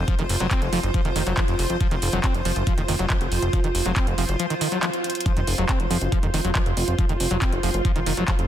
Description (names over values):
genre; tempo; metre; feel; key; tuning
psychedelic trance; 139 BPM; 4/4; straight; unclear; A4 = 440 Hz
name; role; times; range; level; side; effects
fat analog bass; bass; 0.0-8.5 s; F1 to Gb1; -25 LUFS; equal; none
granular cloud pad; texture; 0.0-8.5 s; F4 to C6; -29 LUFS; right 1 dB; built-in reverb, sidechain pumping
screaming distorted acid line; riff; 0.1-8.3 s; Eb3 to C4; -28 LUFS; left 1 dB; distortion, chorus, auto-pan, sidechain pumping, tape echo
electronic kick drum; drums; 0.1-8.4 s; none; -23 LUFS; equal; none
garage drum kit; drums; 0.1-8.5 s; handclaps, hi-hat; -28 LUFS; equal; none
swell; sound effects; 4.6-5.3 s; none; -31 LUFS; equal; none
swarming drone; sustained chords; 5.8-8.5 s; F4; -31 LUFS; right 1 dB; built-in reverb, sidechain pumping
room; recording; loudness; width
light reverb; dense, heavily limited modern master; -20 LUFS; side -11 dB against mid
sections
0.0-8.5 A section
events
swell 4.6-5.3; drum fill 5.0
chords
0.0 F5